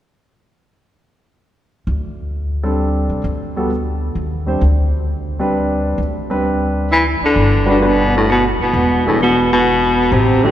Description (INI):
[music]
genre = jazz, small-group swing and bop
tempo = 131 BPM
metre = 3/4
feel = swing 68% on 8ths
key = G major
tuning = A4 = 438 Hz
[part]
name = upright bass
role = bass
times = 1.9-10.5 s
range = E1 to Eb2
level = -19 LUFS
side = equal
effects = none
[part]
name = warm concert grand piano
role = accompaniment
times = 2.6-10.5 s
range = E3 to C5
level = -20 LUFS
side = equal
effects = none
[part]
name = mellow baritone saxophone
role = melody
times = 6.9-10.5 s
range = A2 to E3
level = -14 LUFS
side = left 1 dB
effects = none
[part]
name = breathy tenor saxophone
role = second line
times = 6.9-10.5 s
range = A3 to E4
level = -20 LUFS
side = right 2 dB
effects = none
[sound]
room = wet church reverb, RT60 3.7 s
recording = recorded in a church or concert hall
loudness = -14 LUFS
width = side -11 dB against mid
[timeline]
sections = 1.9-7.4 A section; 7.4-10.5 B section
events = none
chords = 1.9 D7sus4; 3.2 G5/D; 4.6 D7sus4; 7.4 Gmaj7; 8.7 E5